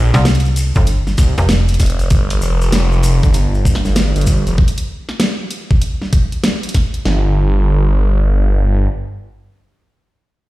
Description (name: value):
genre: glitch hop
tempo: 97 BPM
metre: 4/4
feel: swing 64% on 16ths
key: unclear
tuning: A4 = 439 Hz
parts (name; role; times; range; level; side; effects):
- phased detuned saw bass; bass; 0.0-8.9 s; F1 to C2; -13 LUFS; equal; phaser
- slap-like FM bass; bass; 0.1-1.8 s; F1 to C2; -12 LUFS; equal; none
- dubstep drum kit; drums; 0.1-7.0 s; hi-hat, snare drum; -20 LUFS; equal; none
- maracas; percussion; 0.1-4.6 s; none; -29 LUFS; left 2 dB; none
- dubstep drum kit; drums; 0.8-7.2 s; kick drum, snare drum; -13 LUFS; equal; none
room: little or no reverb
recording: played on a big sound system in a bare room, stone room reverb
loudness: -12 LUFS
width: side -17 dB against mid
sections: 0.0-7.1 A section; 7.1-9.5 B section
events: drop 0.0-7.1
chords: 0.0 G7(no3); 7.1 N.C.